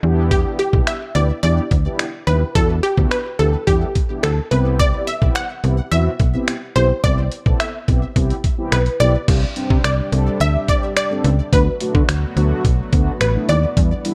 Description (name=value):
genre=dance-pop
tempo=107 BPM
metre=4/4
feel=straight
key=unclear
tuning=A4 = 440 Hz
part: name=mellow synth brass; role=accompaniment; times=0.0-14.1 s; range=G3 to A4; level=-27 LUFS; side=equal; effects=chorus, sidechain pumping
part: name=slap-like FM bass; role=bass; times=0.0-13.9 s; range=A1 to D3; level=-20 LUFS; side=equal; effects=sidechain pumping
part: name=unison pluck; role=melody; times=0.3-14.1 s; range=G4 to F#5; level=-24 LUFS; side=equal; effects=digital delay
part: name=dusty soul sampler-style drum kit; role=drums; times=0.3-14.1 s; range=crash cymbal, finger snaps, hi-hat, kick drum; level=-21 LUFS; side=equal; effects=none
part: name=chorused pulse-width pad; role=sustained chords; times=9.3-14.1 s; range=C3 to G4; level=-32 LUFS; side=equal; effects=sidechain pumping
room=light reverb, digital ambience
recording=none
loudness=-18 LUFS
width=mono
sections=0.0-9.3 A section; 9.3-14.1 B section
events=none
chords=0.0 Em7; 4.5 Cmaj7; 9.3 Csus2; 11.5 D6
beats=| 0.31 0.87 1.43 1.99 | 2.55 3.12 3.67 4.24 | 4.80 5.36 5.92 6.48 | 7.04 7.60 8.16 8.72 | 9.28 9.84 10.40 10.96 | 11.53 12.09 12.65 13.21 | 13.77